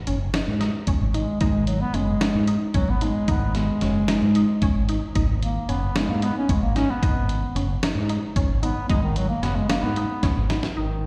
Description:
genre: progressive instrumental, band music in an uneven meter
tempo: 224 BPM (eighths)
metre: 7/8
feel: straight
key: G# minor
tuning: A4 = 440 Hz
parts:
  - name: resonant blip pluck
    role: arpeggios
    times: 0.1-11.1 s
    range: C#4 to D#4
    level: -34 LUFS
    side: equal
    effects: chorus, slapback echo
  - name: mellow fretless electric bass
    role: bass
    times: 0.1-11.1 s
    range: F#1 to G#2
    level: -26 LUFS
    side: equal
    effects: lush chorus
  - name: dusty soul sampler-style drum kit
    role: drums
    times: 0.1-10.8 s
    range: hi-hat, kick drum, snare drum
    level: -28 LUFS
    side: equal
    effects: none
  - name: mellow bass clarinet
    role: melody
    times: 1.1-11.1 s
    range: D#3 to C#4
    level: -28 LUFS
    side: equal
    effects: slapback echo
room: light reverb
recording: live gig heard through the venue's PA, recital hall reverb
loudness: -23 LUFS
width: mono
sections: 0.0-10.8 A section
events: bass clarinet solo 0.0-10.8; drum fill 10.2-10.8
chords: 0.0 G#m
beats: 0.07 0.34 0.61 0.88 1.15 | 1.41 1.68 1.95 2.22 2.48 2.75 3.02 | 3.29 3.56 3.82 4.09 4.36 4.62 4.89 | 5.16 5.43 5.69 5.96 6.23 6.50 6.76 | 7.03 7.30 7.56 7.83 8.10 8.37 8.63 | 8.90 9.17 9.44 9.70 9.97 10.24 10.51 | 10.78 11.04

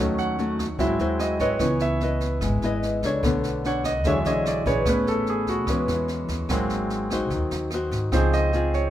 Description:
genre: bossa nova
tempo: 147 BPM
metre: 4/4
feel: straight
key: G# minor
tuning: A4 = 440 Hz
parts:
  - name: bright concert grand piano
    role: accompaniment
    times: 0.0-8.9 s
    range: D3 to F#5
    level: -26 LUFS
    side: right 2 dB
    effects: none
  - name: nylon-string guitar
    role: accompaniment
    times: 0.0-8.9 s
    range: C#3 to D#5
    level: -26 LUFS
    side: left 2 dB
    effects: none
  - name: upright bass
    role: bass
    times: 0.0-8.9 s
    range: G#1 to G#2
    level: -28 LUFS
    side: equal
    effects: none
  - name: jazz brush drum kit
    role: drums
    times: 0.2-8.8 s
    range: kick drum, rim click, snare drum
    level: -31 LUFS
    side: equal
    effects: none
room: light reverb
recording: minimal, uncompressed stereo recording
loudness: -21 LUFS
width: side -12 dB against mid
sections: 0.0-8.9 A section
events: grand piano solo 0.0-8.9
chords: 0.0 D#m7b5; 0.8 G#7b13; 1.6 C#m9; 3.2 Bm9; 4.0 E13; 4.9 Amaj9; 6.5 G#7; 8.1 C#maj7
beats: 0.38 0.79 1.20 | 1.61 2.01 2.42 2.83 | 3.23 3.64 4.05 4.46 | 4.86 5.27 5.68 6.08 | 6.49 6.90 7.31 7.71 | 8.12 8.53

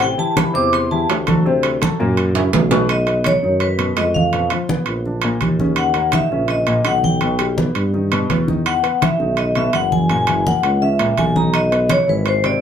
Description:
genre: Afro-Cuban jazz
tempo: 166 BPM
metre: 4/4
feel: straight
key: B major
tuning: A4 = 441 Hz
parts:
  - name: vibraphone with medium hard mallets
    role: melody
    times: 0.0-12.6 s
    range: B4 to D6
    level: -18 LUFS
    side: left 1 dB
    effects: none
  - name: warm upright piano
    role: accompaniment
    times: 0.0-12.6 s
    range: Bb2 to C5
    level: -22 LUFS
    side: left 2 dB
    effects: none
  - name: warm tuba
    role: bass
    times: 0.0-12.6 s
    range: F#1 to G2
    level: -21 LUFS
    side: right 1 dB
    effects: none
  - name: congas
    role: percussion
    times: 0.0-12.6 s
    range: none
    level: -21 LUFS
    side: equal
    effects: none
  - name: timbales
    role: percussion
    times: 0.0-12.6 s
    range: none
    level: -22 LUFS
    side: right 6 dB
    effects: none
room: moderate studio ambience, RT60 0.5 s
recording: band playing live in one room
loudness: -15 LUFS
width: side -8 dB against mid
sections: 0.0-2.9 A section; 2.9-12.6 B section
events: vibraphone solo 0.0-2.9; drum fill 2.3-2.9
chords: 0.0 Am7; 1.4 D7; 2.2 F#7; 2.9 B69; 4.3 A#5; 5.1 A#; 5.8 D#m7; 7.2 Baug; 8.7 Esus2; 10.1 F#9; 11.5 B6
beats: | 0.01 0.37 0.73 1.09 | 1.45 1.81 2.17 2.53 | 2.89 3.25 3.61 3.97 | 4.33 4.69 5.05 5.41 | 5.77 6.13 6.49 6.85 | 7.21 7.57 7.93 8.29 | 8.65 9.02 9.38 9.73 | 10.10 10.46 10.82 11.18 | 11.54 11.90 12.26

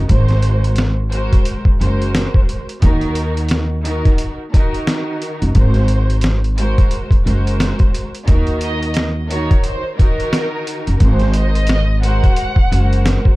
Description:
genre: hip hop, boom-bap hip-hop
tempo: 88 BPM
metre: 4/4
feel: swing 60% on 16ths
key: unclear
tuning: A4 = 442 Hz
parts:
  - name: dark studio string section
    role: accompaniment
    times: 0.0-13.4 s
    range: Eb3 to C5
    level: -22 LUFS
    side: equal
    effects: cassette tape, high-pass filter, low-pass filter
  - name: upright bass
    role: bass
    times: 0.0-13.2 s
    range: Gb1 to Eb2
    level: -16 LUFS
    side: equal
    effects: none
  - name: trip hop sampler-style drum kit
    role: drums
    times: 0.1-13.4 s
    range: hi-hat, kick drum, snare drum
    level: -15 LUFS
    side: equal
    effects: none
  - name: warm studio violin section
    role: melody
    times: 8.6-13.2 s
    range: Bb4 to Gb5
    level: -24 LUFS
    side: right 1 dB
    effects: high-pass filter, low-pass filter, digital delay
room: small room ambience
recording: dark, warm production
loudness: -13 LUFS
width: side -20 dB against mid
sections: 0.0-13.4 A section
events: break 0.0-2.8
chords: 0.1 Ab9; 2.8 Ebm; 5.6 Ab9; 8.3 Ebm; 11.0 Ab9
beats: | 0.10 0.78 1.46 2.14 | 2.83 3.51 4.19 4.87 | 5.55 6.24 6.92 7.60 | 8.28 8.96 9.64 10.33 | 11.01 11.69 12.37 13.05

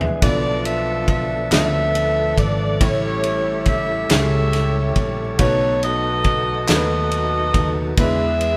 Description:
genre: slow gospel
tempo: 46 BPM (dotted quarters)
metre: 6/8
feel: straight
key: unclear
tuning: A4 = 438 Hz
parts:
  - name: warm upright piano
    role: accompaniment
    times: 0.0-8.6 s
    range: A2 to G#5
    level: -28 LUFS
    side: equal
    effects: none
  - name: bright tonewheel organ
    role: sustained chords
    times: 0.0-8.6 s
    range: E3 to A4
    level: -30 LUFS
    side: equal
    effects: slow rotary speaker, overdrive
  - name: natural country drum kit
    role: drums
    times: 0.0-8.6 s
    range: kick drum, ride cymbal, snare drum, toms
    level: -24 LUFS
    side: equal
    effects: none
  - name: mellow saxophone section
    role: melody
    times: 0.2-8.6 s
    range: E4 to E5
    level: -24 LUFS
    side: equal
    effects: none
  - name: fingered electric bass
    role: bass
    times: 0.2-8.6 s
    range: G#1 to E2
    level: -26 LUFS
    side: equal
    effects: none
  - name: group handclap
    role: percussion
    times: 1.5-7.1 s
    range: none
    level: -31 LUFS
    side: equal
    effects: none
room: moderate stone room reverb, RT60 0.9 s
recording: band playing live in one room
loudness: -19 LUFS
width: mono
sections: 0.0-8.6 A section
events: drum fill 0.0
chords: 0.2 Bm7b5; 2.8 A7; 5.4 B7; 8.0 E7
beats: | 0.22 1.52 | 2.81 4.10 | 5.39 6.69 | 7.98

